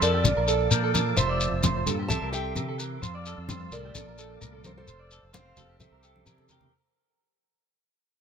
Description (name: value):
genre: highlife guitar band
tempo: 130 BPM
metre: 4/4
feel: straight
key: F major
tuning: A4 = 440 Hz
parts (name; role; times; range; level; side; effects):
- fingerpicked steel-string acoustic guitar; melody; 0.0-6.5 s; A4 to A5; -31 LUFS; equal; none
- semi-hollow electric guitar; accompaniment; 0.0-6.7 s; F2 to A4; -34 LUFS; left 1 dB; none
- tonewheel organ; sustained chords; 0.0-6.7 s; F4 to E6; -38 LUFS; right 1 dB; chorus vibrato, slow rotary speaker
- electric guitar at the edge of break-up; arpeggios; 0.0-6.7 s; G4 to D5; -32 LUFS; right 7 dB; tape echo
- fingered electric bass; bass; 0.0-6.7 s; F1 to C3; -31 LUFS; equal; none
- shekere; percussion; 0.0-6.6 s; none; -27 LUFS; left 4 dB; none
- congas; percussion; 0.3-6.7 s; none; -32 LUFS; equal; none
room: light reverb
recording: none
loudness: -24 LUFS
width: side -7 dB against mid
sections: 0.0-6.7 A section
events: fade-out 0.0-6.7; drum fill 6.1-6.7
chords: 0.3 Bbmaj7; 1.2 Fmaj7; 2.1 Cadd9; 3.0 Fmaj7; 4.0 Bbmaj7; 4.9 Fmaj7; 5.8 Cadd9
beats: 0.25 0.71 | 1.18 1.64 2.10 2.56 | 3.03 3.49 3.95 4.42 | 4.88 5.34 5.80 6.26